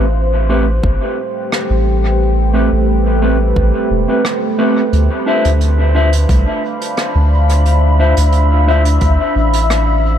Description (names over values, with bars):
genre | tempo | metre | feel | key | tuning
ambient dub | 88 BPM | 4/4 | swing 53% on 16ths | D dorian | A4 = 439 Hz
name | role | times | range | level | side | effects
deep dark ambient pad | sustained chords | 0.0-10.2 s | A3 to F5 | -18 LUFS | equal | chorus, built-in reverb
mellow electric guitar | stabs | 0.0-8.8 s | A3 to E5 | -19 LUFS | left 1 dB | low-pass filter, dub echo
soft dub sub bass | bass | 0.0-10.2 s | E1 to D2 | -12 LUFS | equal | none
electronic kick drum | drums | 0.8-9.2 s | none | -18 LUFS | equal | none
jazz brush drum kit | drums | 1.5-9.8 s | hi-hat, rim click | -24 LUFS | right 2 dB | dub echo
wind-like tuned noise texture | texture | 6.2-10.2 s | B5 | -23 LUFS | right 6 dB | built-in reverb
room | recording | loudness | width
light reverb, small room ambience | none | -11 LUFS | side -9 dB against mid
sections
0.0-10.2 A section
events
none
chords
0.0 Am9; 4.9 Dm9